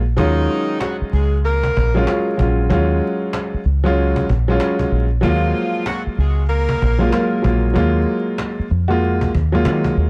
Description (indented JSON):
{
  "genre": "hip hop, boom-bap hip-hop",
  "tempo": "95 BPM",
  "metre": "4/4",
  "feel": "swing 63% on 16ths",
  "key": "Eb minor",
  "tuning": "A4 = 440 Hz",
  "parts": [
    { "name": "deep dub fingered electric bass", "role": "bass", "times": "0.0-10.1 s", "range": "Bb1 to Eb3", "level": "-20 LUFS", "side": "equal", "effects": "none" },
    { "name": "warm upright piano", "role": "accompaniment", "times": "0.2-10.1 s", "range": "Gb3 to Gb4", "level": "-22 LUFS", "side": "equal", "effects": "cassette tape" },
    { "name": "mellow saxophone section", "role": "stabs", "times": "0.2-7.3 s", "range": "Eb3 to Bb4", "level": "-26 LUFS", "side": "equal", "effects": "analog delay" },
    { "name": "cajon", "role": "drums", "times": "0.2-10.1 s", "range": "none", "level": "-28 LUFS", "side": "equal", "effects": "none" }
  ],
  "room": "little or no reverb",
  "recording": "dry, gritty hardware recording, transformer saturation, vinyl crackle",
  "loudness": "-18 LUFS",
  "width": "mono",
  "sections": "0.0-10.1 A section",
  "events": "break 0.0",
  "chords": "0.0 Ebm11",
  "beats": "| 0.18 0.81 1.44 2.07 | 2.70 3.33 3.97 4.60 | 5.23 5.86 6.49 7.12 | 7.76 8.39 9.02 9.65"
}